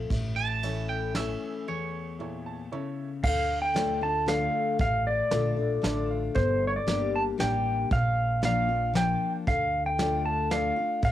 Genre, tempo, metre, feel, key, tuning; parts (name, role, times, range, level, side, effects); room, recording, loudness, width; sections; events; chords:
honky-tonk and classic country; 115 BPM; 3/4; straight; D minor; A4 = 441 Hz
picked steel-string acoustic guitar; accompaniment; 0.0-11.1 s; E2 to G4; -32 LUFS; left 6 dB; cassette tape
upright bass; bass; 0.0-11.1 s; G1 to D2; -31 LUFS; right 1 dB
soft brush drum kit; drums; 0.1-11.1 s; crash cymbal, hi-hat, kick drum, ride cymbal, snare drum; -32 LUFS; right 1 dB; cassette tape
twangy electric guitar; second line; 0.4-2.9 s; C#5 to A5; -34 LUFS; right 7 dB; cassette tape, analog delay
clear upright piano; accompaniment; 0.6-10.9 s; D4 to A5; -39 LUFS; right 7 dB; cassette tape
pedal steel guitar; melody; 3.2-11.1 s; C5 to A5; -27 LUFS; equal; cassette tape
light reverb; home recording on cassette; -25 LUFS; side -12 dB against mid
0.0-3.2 A section; 3.2-11.1 B section
clean electric guitar solo 0.0-3.2; break 1.7-3.2; upright piano fill 2.2-3.2, 5.6-6.4
0.1 A; 3.2 Dm; 6.4 Gm; 7.9 Bb; 9.5 Dm